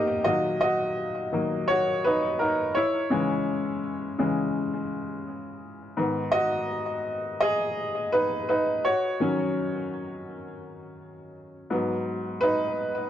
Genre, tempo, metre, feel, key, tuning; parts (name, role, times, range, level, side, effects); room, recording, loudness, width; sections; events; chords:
pop; 84 BPM; 4/4; straight; G# minor; A4 = 441 Hz
bright upright piano; solo; 0.0-13.1 s; D#2 to D#5; -24 LUFS; equal; ping-pong delay
moderate plate reverb, RT60 2.6 s; worn, warbling old tape, cassette tape, warbly pitch drift; -24 LUFS; side -10 dB against mid
0.2-11.7 A section; 11.7-13.1 B section
upright piano solo 0.2-11.7, 11.7-13.1
0.2 D#m; 2.8 C#m; 6.0 G#m; 8.8 D#m7; 11.7 G#m7